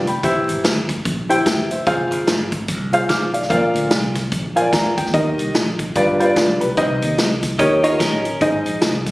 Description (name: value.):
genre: uptempo gospel.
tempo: 147 BPM.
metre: 4/4.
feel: swing 60% on 8ths.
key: Eb major.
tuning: A4 = 439 Hz.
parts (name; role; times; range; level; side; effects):
warm baby grand piano; accompaniment; 0.0-9.0 s; G2 to F6; -18 LUFS; equal; none.
modern bright fingered electric bass; bass; 0.0-9.1 s; E1 to Fb2; -26 LUFS; equal; none.
swinging big-band drum kit; drums; 0.1-9.1 s; hi-hat, kick drum, snare drum; -21 LUFS; equal; none.
clean electric guitar; second line; 7.6-8.4 s; Db4 to Eb5; -22 LUFS; right 2 dB; none.
room: light reverb, small room ambience.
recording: recorded on a phone in the room, studio reverb, compression.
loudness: -16 LUFS.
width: side -20 dB against mid.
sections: 0.0-9.1 A section.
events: grand piano fill 4.3-5.1.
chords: 0.2 C/E; 1.9 Fm; 3.5 Bb; 5.1 Eb; 6.0 G7; 6.8 Cm; 7.6 Eb7; 8.4 Ab.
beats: | 0.23 0.64 1.05 1.46 | 1.87 2.28 2.69 3.10 | 3.50 3.91 4.32 4.73 | 5.14 5.55 5.96 6.37 | 6.78 7.18 7.59 8.00 | 8.41 8.82.